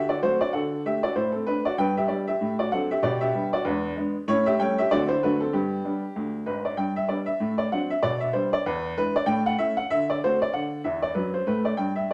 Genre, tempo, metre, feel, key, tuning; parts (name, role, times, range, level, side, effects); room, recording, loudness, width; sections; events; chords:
jazz, stride piano; 192 BPM; 4/4; swing 59% on 8ths; G major; A4 = 440 Hz
clear upright piano; solo; 0.0-12.1 s; Ab1 to G5; -25 LUFS; equal
wet studio reverb, RT60 0.8 s; -25 LUFS; mono
0.0-6.8 A section; 6.8-12.1 A section
upright piano fill 10.8-11.8
0.0 D7; 0.5 D; 1.8 G; 2.4 D7/A; 3.0 G/B; 3.7 E7; 4.3 A7; 4.9 D7; 5.2 D; 5.5 G; 7.4 D7/A; 8.0 G/B; 8.7 E7; 9.3 A; 9.9 D7; 10.5 D